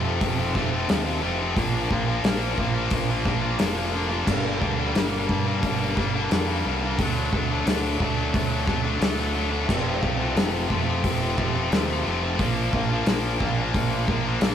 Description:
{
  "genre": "quiet-loud alternative rock",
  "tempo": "89 BPM",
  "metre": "4/4",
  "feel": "straight",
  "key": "unclear",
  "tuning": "A4 = 436 Hz",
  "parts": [
    { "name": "tight distorted guitar", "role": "riff", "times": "0.0-14.5 s", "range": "F2 to D4", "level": "-26 LUFS", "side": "left 6 dB", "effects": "distortion" },
    { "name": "tight distorted guitar", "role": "riff", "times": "0.0-14.5 s", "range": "F2 to D4", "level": "-30 LUFS", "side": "right 6 dB", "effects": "distortion" },
    { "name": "growling fingered electric bass", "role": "bass", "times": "0.0-14.5 s", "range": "F1 to G2", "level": "-29 LUFS", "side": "equal", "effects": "overdrive" },
    { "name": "loose indie drum kit", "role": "drums", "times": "0.2-14.5 s", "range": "crash cymbal, hi-hat, kick drum, snare drum", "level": "-26 LUFS", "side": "right 1 dB", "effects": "none" }
  ],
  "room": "moderate studio reverb, RT60 0.5 s",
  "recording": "rough rehearsal-room recording",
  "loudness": "-21 LUFS",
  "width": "side -9 dB against mid",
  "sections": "0.0-14.5 A section",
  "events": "none",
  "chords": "0.0 F; 1.6 Bb; 4.3 Gm; 7.0 D; 9.7 F; 12.4 Bb",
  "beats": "0.21 0.88 | 1.56 2.24 2.92 3.60 | 4.27 4.95 5.63 6.31 | 6.99 7.66 8.34 9.02 | 9.69 10.37 11.04 11.72 | 12.39 13.07 13.74 14.42"
}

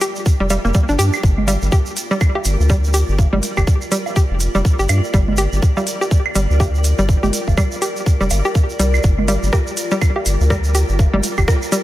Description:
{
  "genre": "minimal techno",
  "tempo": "123 BPM",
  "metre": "4/4",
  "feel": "swing 59% on 16ths",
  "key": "G minor",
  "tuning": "A4 = 439 Hz",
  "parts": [
    { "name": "hollow square pluck", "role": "riff", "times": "0.0-11.8 s", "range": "G3 to G4", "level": "-21 LUFS", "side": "equal", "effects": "chorus, cassette tape, sidechain pumping, analog delay" },
    { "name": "minimal click drum kit", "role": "drums", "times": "0.0-11.8 s", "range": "hi-hat, rim click", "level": "-24 LUFS", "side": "left 1 dB", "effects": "studio reverb" },
    { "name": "tube shaker", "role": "percussion", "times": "0.0-11.8 s", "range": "none", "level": "-28 LUFS", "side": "right 4 dB", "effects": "none" },
    { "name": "granular cloud pad", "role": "texture", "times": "0.0-11.8 s", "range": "F4 to G5", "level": "-28 LUFS", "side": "equal", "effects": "built-in reverb, lush chorus, sidechain pumping" },
    { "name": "electronic kick drum", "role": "drums", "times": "0.3-11.6 s", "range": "none", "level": "-15 LUFS", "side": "equal", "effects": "studio reverb" },
    { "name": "round analog bass", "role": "bass", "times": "0.4-11.5 s", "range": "F1 to G2", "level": "-17 LUFS", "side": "equal", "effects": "sidechain pumping" },
    { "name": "woodblock, claves and congas", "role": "percussion", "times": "0.5-11.5 s", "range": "none", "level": "-26 LUFS", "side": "right 4 dB", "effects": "studio reverb, diffuse ambient delay" }
  ],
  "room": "light reverb, digital ambience",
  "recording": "none",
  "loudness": "-14 LUFS",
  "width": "side -15 dB against mid",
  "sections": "0.0-11.8 A section",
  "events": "fade-in on ambient pad 0.0-11.8",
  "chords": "0.0 Gm7",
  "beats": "0.26 0.75 | 1.24 1.72 2.21 2.70 | 3.19 3.67 4.16 4.65 | 5.14 5.62 6.11 6.60 | 7.09 7.58 8.06 8.55 | 9.04 9.53 10.02 10.50 | 10.99 11.48"
}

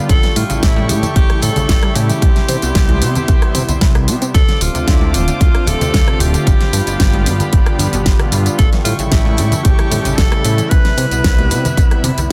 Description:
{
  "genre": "nu-disco, nu disco",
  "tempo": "113 BPM",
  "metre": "4/4",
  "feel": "straight",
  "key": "unclear",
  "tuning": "A4 = 439 Hz",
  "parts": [
    { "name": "warm analog pad", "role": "accompaniment", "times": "0.0-12.0 s", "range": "C3 to G4", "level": "-24 LUFS", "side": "equal", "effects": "chorus, sidechain pumping" },
    { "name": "warm studio violin section", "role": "sustained chords", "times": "0.0-12.3 s", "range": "B3 to D6", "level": "-30 LUFS", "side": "equal", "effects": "sidechain pumping" },
    { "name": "unison pluck", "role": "arpeggios", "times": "0.0-12.3 s", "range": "B2 to G4", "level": "-28 LUFS", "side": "equal", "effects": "none" },
    { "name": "clear tenor saxophone", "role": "melody", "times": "0.1-12.3 s", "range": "E4 to B4", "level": "-25 LUFS", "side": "equal", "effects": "delay" },
    { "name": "fat analog bass", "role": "bass", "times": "0.1-12.3 s", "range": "D1 to C3", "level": "-20 LUFS", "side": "equal", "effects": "none" },
    { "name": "electronic kick drum", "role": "drums", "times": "0.1-11.9 s", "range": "none", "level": "-15 LUFS", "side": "equal", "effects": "none" },
    { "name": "pop drum kit", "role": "drums", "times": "0.1-12.3 s", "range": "hi-hat, rim click, snare drum, tambourine", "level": "-23 LUFS", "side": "equal", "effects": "none" },
    { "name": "maracas and congas", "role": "percussion", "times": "0.1-12.3 s", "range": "none", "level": "-27 LUFS", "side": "equal", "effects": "none" }
  ],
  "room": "little or no reverb",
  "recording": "dense, heavily limited modern master",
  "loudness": "-14 LUFS",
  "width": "mono",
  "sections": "0.0-12.3 A section",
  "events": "none",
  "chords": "0.1 A7; 2.2 Cmaj7; 4.3 Dm7; 6.5 G7; 8.6 A7; 10.7 Cmaj7",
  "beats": "| 0.09 0.62 1.16 1.69 | 2.22 2.75 3.28 3.81 | 4.34 4.87 5.40 5.93 | 6.46 7.00 7.53 8.06 | 8.59 9.12 9.65 10.18 | 10.71 11.24 11.78 12.31"
}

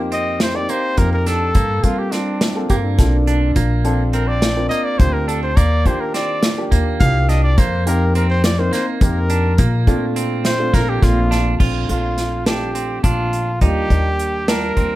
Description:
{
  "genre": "progressive instrumental, band music in an uneven meter",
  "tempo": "209 BPM (eighths)",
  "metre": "7/8",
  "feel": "straight",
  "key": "Bb major",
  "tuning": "A4 = 440 Hz",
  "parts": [
    { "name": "dark baby grand piano", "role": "accompaniment", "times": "0.0-15.0 s", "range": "G3 to Bb4", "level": "-24 LUFS", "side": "equal", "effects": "none" },
    { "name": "upright bass", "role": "bass", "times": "0.0-15.0 s", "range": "Bb1 to G3", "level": "-18 LUFS", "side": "equal", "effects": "none" },
    { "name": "warm trumpet", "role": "melody", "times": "0.1-15.0 s", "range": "D4 to F5", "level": "-22 LUFS", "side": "equal", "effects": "plate reverb" },
    { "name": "clean electric guitar", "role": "arpeggios", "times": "0.1-15.0 s", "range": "Bb3 to F4", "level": "-27 LUFS", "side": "right 5 dB", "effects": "digital delay" },
    { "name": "unplugged drum kit", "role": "drums", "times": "0.1-14.9 s", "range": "crash cymbal, hi-hat, kick drum, snare drum", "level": "-18 LUFS", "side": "equal", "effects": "none" },
    { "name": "mellow trombone", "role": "second line", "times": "2.7-4.0 s", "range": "D4 to G4", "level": "-22 LUFS", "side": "right 2 dB", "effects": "none" }
  ],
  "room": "light reverb",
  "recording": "none",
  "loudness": "-15 LUFS",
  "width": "side -16 dB against mid",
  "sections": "0.0-11.6 A section; 11.6-15.0 B section",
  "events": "trumpet solo 0.0-11.6",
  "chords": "0.0 F9sus4; 1.6 Gm11; 3.6 Bbmaj9; 5.6 Ebmaj7; 7.6 F9sus4; 9.6 Bbmaj9; 13.6 Ebmaj7",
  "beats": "0.12 0.41 0.69 0.98 1.27 | 1.55 1.84 2.13 2.42 2.70 2.99 3.27 | 3.56 3.85 4.13 4.42 4.71 5.00 5.28 | 5.57 5.86 6.14 6.43 6.71 7.00 7.29 | 7.58 7.86 8.15 8.44 8.72 9.01 9.30 | 9.59 9.87 10.16 10.45 10.73 11.02 11.31 | 11.60 11.89 12.17 12.46 12.75 13.04 13.33 | 13.62 13.90 14.19 14.48 14.77"
}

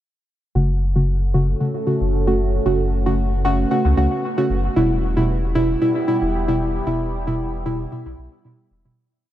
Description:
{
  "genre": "dub techno",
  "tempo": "114 BPM",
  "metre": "4/4",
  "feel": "swing 54% on 16ths",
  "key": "F# phrygian",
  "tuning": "A4 = 439 Hz",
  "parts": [
    { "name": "deep dark ambient pad", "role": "sustained chords", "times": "1.1-8.9 s", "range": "G3 to B4", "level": "-27 LUFS", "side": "right 1 dB", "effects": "chorus, built-in reverb" },
    { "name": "deep mellow chord stab", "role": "stabs", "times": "0.6-9.0 s", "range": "B2 to F#4", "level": "-20 LUFS", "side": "equal", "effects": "chorus, phaser, dub echo" },
    { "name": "pure sine sub bass", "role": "bass", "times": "0.6-8.9 s", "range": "E1 to C#2", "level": "-21 LUFS", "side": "equal", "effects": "none" }
  ],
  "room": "light reverb",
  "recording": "none",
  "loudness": "-17 LUFS",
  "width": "side -12 dB against mid",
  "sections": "0.6-9.0 groove",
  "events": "fade-out 6.2-9.0",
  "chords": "0.6 F#m; 4.8 Em",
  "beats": "| 0.55 1.08 1.60 2.13 | 2.66 3.18 3.71 4.24 | 4.76 5.29 5.82 6.34 | 6.87 7.39 7.92 8.45"
}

